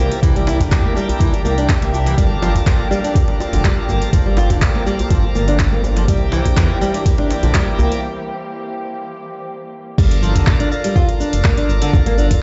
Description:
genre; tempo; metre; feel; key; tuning
afro house; 123 BPM; 4/4; swing 53% on 16ths; G dorian; A4 = 440 Hz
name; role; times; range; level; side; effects
muted studio string section; sustained chords; 0.0-9.9 s; E3 to G4; -28 LUFS; equal; sidechain pumping
nylon-string guitar; arpeggios; 0.0-12.3 s; D3 to F4; -24 LUFS; equal; sidechain pumping, delay
overdriven tonewheel organ; stabs; 0.0-12.4 s; E4 to E5; -28 LUFS; equal; slow rotary speaker, sidechain pumping, delay
dark detuned saw bass; bass; 0.0-12.4 s; F1 to E2; -21 LUFS; equal; tube saturation, sidechain pumping
deep house drum kit; drums; 0.1-12.4 s; cabasa, crash cymbal, handclaps, hi-hat; -29 LUFS; equal; none
electronic kick drum; drums; 0.2-12.4 s; none; -18 LUFS; equal; none
djembe; percussion; 0.5-7.9 s; none; -27 LUFS; equal; none
room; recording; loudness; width
light reverb; played on a big sound system in a bare room, stone room reverb, nothing above 7.8 kHz; -16 LUFS; mono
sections
0.0-10.0 A section; 10.0-12.4 B section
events
filter sweep on nylon-string guitar 0.0-10.0; break 8.0-10.0; drop 10.0-12.4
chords
0.0 C7; 2.2 Gm7; 6.1 C7; 10.0 Gm7

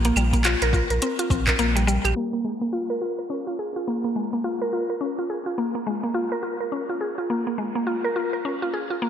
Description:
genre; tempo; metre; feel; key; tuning
organic downtempo; 105 BPM; 4/4; swing 60% on 16ths; Bb dorian; A4 = 440 Hz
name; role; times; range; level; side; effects
mallet-like synth pluck; arpeggios; 0.0-9.1 s; G3 to Bb4; -24 LUFS; equal; chorus, digital delay, shimmer reverb
warm sub bass; bass; 0.0-2.1 s; Bb1; -23 LUFS; equal; sidechain pumping
organic electronic drum kit; drums; 0.0-2.1 s; claves, handclaps, hi-hat, shaker; -26 LUFS; right 1 dB; overdrive, gated reverb
electronic kick drum; drums; 0.3-1.6 s; none; -25 LUFS; equal; overdrive
room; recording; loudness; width
wet lush hall reverb, RT60 2.0 s; bright 1980s-style digital production, low-pass filter; -22 LUFS; side -9 dB against mid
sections
0.0-2.2 A section; 2.2-9.1 B section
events
filter sweep on synth pluck 2.2-9.1; filter sweep 2.2-9.1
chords
0.0 C5/Bb; 2.2 Bb5

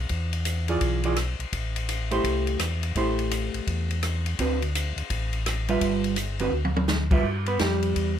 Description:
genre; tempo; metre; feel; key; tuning
soul jazz organ trio; 168 BPM; 4/4; swing 64% on 8ths; G mixolydian; A4 = 441 Hz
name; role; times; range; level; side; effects
mellow tonewheel organ; bass; 0.0-8.2 s; G1 to G2; -27 LUFS; left 1 dB; slow rotary speaker
swinging big-band drum kit; drums; 0.1-8.1 s; crash cymbal, hi-hat, kick drum, ride cymbal, rim click, snare drum, toms; -29 LUFS; left 1 dB; none
vintage hollow-body jazz guitar; accompaniment; 0.7-8.1 s; D3 to E5; -26 LUFS; right 2 dB; none
room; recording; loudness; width
little or no reverb; close, detailed microphones; -23 LUFS; side -9 dB against mid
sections
0.0-7.2 A section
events
drum fill 6.5-6.9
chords
0.1 E7b9; 1.5 Am7; 4.4 D13; 5.8 G6

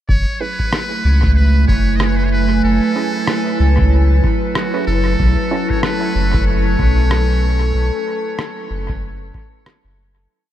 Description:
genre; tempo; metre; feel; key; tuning
ambient dub; 94 BPM; 4/4; swing 58% on 16ths; F# minor; A4 = 441 Hz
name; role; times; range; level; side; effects
trumpet with metal mute; melody; 0.1-9.6 s; F#4 to D#5; -24 LUFS; equal; vintage 12-bit sampler grit, dub echo
warbly tape-like pad; sustained chords; 0.5-10.3 s; F#3 to G#5; -20 LUFS; right 2 dB; chorus, built-in reverb
warm sub bass; bass; 0.1-10.3 s; F#1 to C#2; -14 LUFS; equal; none
electronic kick drum; drums; 0.1-9.5 s; none; -19 LUFS; equal; none
filtered dub chord stab; stabs; 0.4-5.7 s; A3 to B4; -28 LUFS; right 3 dB; chorus, dub echo
electronic rim click; drums; 0.7-9.8 s; none; -26 LUFS; equal; dub echo
drifting glass-harmonics texture; texture; 5.5-10.3 s; A3 to A4; -27 LUFS; left 4 dB; chorus, built-in reverb
room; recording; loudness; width
moderate huge ambient reverb, RT60 3.8 s; dreamy mix soaked in reverb; -13 LUFS; side -12 dB against mid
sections
0.1-10.3 groove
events
fade-out 6.9-10.3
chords
0.1 F#m11; 5.2 B9sus4

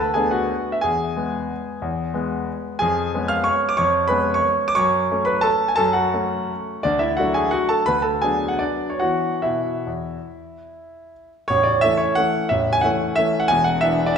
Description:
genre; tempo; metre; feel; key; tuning
classical, piano waltz; 138-196 BPM; 3/4; rubato; A major; A4 = 440 Hz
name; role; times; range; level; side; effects
clear concert grand piano; solo; 0.0-14.2 s; A0 to E#6; -18 LUFS; equal; none
room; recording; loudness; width
wet recital hall reverb, RT60 1.5 s; recorded in a church or concert hall; -18 LUFS; side -7 dB against mid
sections
0.0-11.5 A section; 11.5-14.2 B section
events
none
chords
0.0 Bm7/D; 0.8 E; 2.8 C#7/E#; 4.8 F#m; 6.9 D; 7.9 Bm/D; 9.0 E5; 11.5 A; 13.5 E5

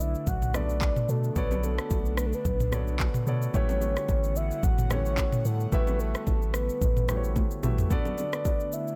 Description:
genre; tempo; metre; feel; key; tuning
amapiano; 110 BPM; 4/4; swing 55% on 16ths; B minor; A4 = 440 Hz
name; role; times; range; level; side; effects
soft octave-layered synth lead; melody; 0.0-9.0 s; A4 to F#5; -35 LUFS; equal; chorus, tremolo, tape echo
warm grand piano; accompaniment; 0.0-9.0 s; A3 to E5; -39 LUFS; equal; none
airy breathy pad; sustained chords; 0.0-9.0 s; D3 to F#5; -41 LUFS; equal; chorus, phaser, sidechain pumping
punchy sub bass; bass; 0.0-7.8 s; A1 to B2; -32 LUFS; equal; none
afro-pop drum kit; drums; 0.0-9.0 s; handclaps, kick drum, rim click, shaker, toms; -31 LUFS; equal; none
congas and bongos; percussion; 0.3-8.6 s; none; -38 LUFS; equal; none
room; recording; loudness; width
little or no reverb; none; -27 LUFS; mono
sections
0.0-9.0 A section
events
drum fill 7.4-7.9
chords
0.0 Bm9; 3.5 A13; 7.9 Bm7

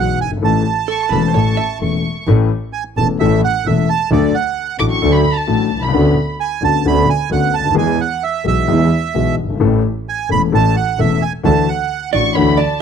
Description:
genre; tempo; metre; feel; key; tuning
tango; 131 BPM; 4/4; rubato; A major; A4 = 440 Hz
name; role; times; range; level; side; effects
bandoneon; melody; 0.0-12.1 s; D5 to B5; -18 LUFS; right 10 dB; none
warm concert grand piano; accompaniment; 0.0-12.6 s; E1 to A4; -16 LUFS; left 6 dB; none
rich double bass; bass; 0.0-12.6 s; E1 to E2; -18 LUFS; right 3 dB; none
archtop guitar, miked and amplified; second line; 0.9-2.2, 12.1-12.8 s; A4 to E5; -22 LUFS; right 14 dB; none
warm studio violin section; second line; 0.9-6.3, 12.1-12.8 s; A5 to D6; -22 LUFS; left 1 dB; none
room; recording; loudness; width
studio reverb; dry, close 1970s-style studio recording; -13 LUFS; side -7 dB against mid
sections
0.0-2.3 A section; 2.3-12.8 B section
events
none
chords
0.4 A; 4.1 D; 5.9 Bmadd9/D; 7.8 E; 9.6 A; 11.5 Dadd9

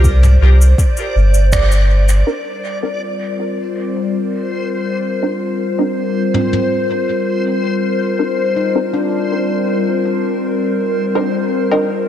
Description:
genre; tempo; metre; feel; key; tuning
ambient dub; 81 BPM; 4/4; straight; C minor; A4 = 439 Hz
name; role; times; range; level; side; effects
warbly tape-like pad; sustained chords; 0.0-12.1 s; G3 to C5; -19 LUFS; left 2 dB; chorus, built-in reverb, phaser
handpan; arpeggios; 0.0-10.4 s; C4 to D5; -26 LUFS; right 1 dB; low-pass filter, dub echo
filtered dub chord stab; stabs; 0.0-11.9 s; C4 to Bb4; -22 LUFS; equal; phaser, lush chorus, dub echo
soft dub sub bass; bass; 0.0-2.2 s; G1 to C2; -9 LUFS; equal; none
electronic kick drum; drums; 0.0-1.7 s; none; -16 LUFS; equal; overdrive
soft brush drum kit; drums; 0.0-6.7 s; cabasa, finger snaps, toms; -24 LUFS; equal; low-pass filter on toms, low-pass filter on snare, low-pass filter on perc, low-pass filter on room, dub echo
backwards swelling texture; texture; 0.1-12.1 s; C5 to D5; -23 LUFS; left 2 dB; built-in reverb
room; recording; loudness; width
moderate concert hall reverb, RT60 2.2 s; none; -14 LUFS; side -10 dB against mid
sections
0.0-2.3 A section; 2.3-12.1 B section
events
band accent 1.5-1.9; filter sweep on handpan 2.3-12.1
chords
0.0 G5; 2.3 Cm9

